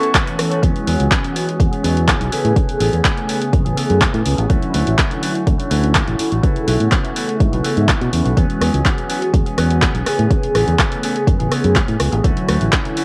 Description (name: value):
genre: filtered disco house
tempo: 124 BPM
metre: 4/4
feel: straight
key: E mixolydian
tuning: A4 = 440 Hz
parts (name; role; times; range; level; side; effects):
- mellow synth brass; accompaniment; 0.0-13.0 s; C#3 to A4; -24 LUFS; equal; chorus, phaser, cassette tape, sidechain pumping, low-pass filter
- string machine, full ensemble; sustained chords; 0.0-0.6 s; none; barely audible; none; none
- electric guitar with an envelope filter; riff; 0.0-13.0 s; E3 to G#4; -28 LUFS; equal; sidechain pumping, low-pass filter
- punchy analog drum machine; drums; 0.0-13.0 s; handclaps, hi-hat, rim click; -23 LUFS; equal; overdrive, sidechain pumping on hats
- electronic kick drum; drums; 0.1-12.8 s; none; -19 LUFS; equal; overdrive
- fingered electric bass; bass; 0.6-12.7 s; A1 to B2; -20 LUFS; equal; sidechain pumping, low-pass filter
room: light reverb, digital ambience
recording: home recording on cassette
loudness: -17 LUFS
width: mono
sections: 0.6-13.0 A section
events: filter sweep 0.6-13.0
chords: 0.0 B9sus4; 0.6 E69; 2.3 Amaj9; 4.5 Dmaj9; 6.4 B9sus4; 8.4 E69; 10.1 Amaj9; 12.2 Dmaj9